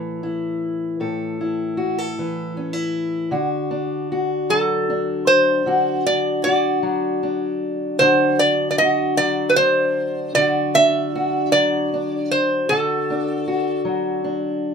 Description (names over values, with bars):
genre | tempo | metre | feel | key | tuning
acoustic country blues, solo or duo | 51 BPM (dotted quarters) | 12/8 | straight | unclear | A4 = 443 Hz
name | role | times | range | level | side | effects
fingerpicked steel-string acoustic guitar | accompaniment | 0.0-14.7 s | A2 to A4 | -21 LUFS | left 1 dB | none
metal-body resonator slide guitar | melody | 4.5-13.8 s | A4 to E5 | -18 LUFS | right 1 dB | none
room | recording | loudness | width
light reverb | minimal, uncompressed stereo recording | -18 LUFS | side -6 dB against mid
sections
0.0-14.7 A section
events
none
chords
0.0 A5; 3.3 D